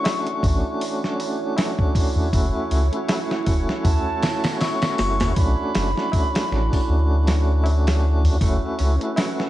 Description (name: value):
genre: trip hop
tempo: 79 BPM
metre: 4/4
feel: swing 57% on 16ths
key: B minor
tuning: A4 = 440 Hz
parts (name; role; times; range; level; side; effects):
- mellow wooden flute; melody; 0.0-9.5 s; F#5 to C#6; -29 LUFS; equal; tape echo
- tonewheel organ; accompaniment; 0.0-9.5 s; A3 to F#4; -26 LUFS; equal; overdrive, tremolo, tape echo
- deep dark ambient pad; sustained chords; 0.0-9.5 s; E4 to E5; -31 LUFS; right 2 dB; chorus, built-in reverb
- tabla; percussion; 0.0-9.3 s; none; -27 LUFS; equal; none
- dusty soul sampler-style drum kit; drums; 0.1-9.5 s; hi-hat, kick drum, snare drum; -23 LUFS; equal; none
- soft dub sub bass; bass; 0.4-9.0 s; E1 to D2; -20 LUFS; equal; none
- concert harp; arpeggios; 8.4-9.5 s; A3 to F#4; -32 LUFS; left 1 dB; tape echo
- wind-like tuned noise texture; texture; 8.8-9.5 s; B4; -40 LUFS; right 7 dB; none
room: light reverb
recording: vinyl crackle, nothing above 10.8 kHz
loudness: -18 LUFS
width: side -14 dB against mid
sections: 0.0-9.5 A section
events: kick drops out 6.9-8.4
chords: 0.0 Bm9 (rootless); 2.3 F#m7; 5.4 Bm9; 8.4 F#m7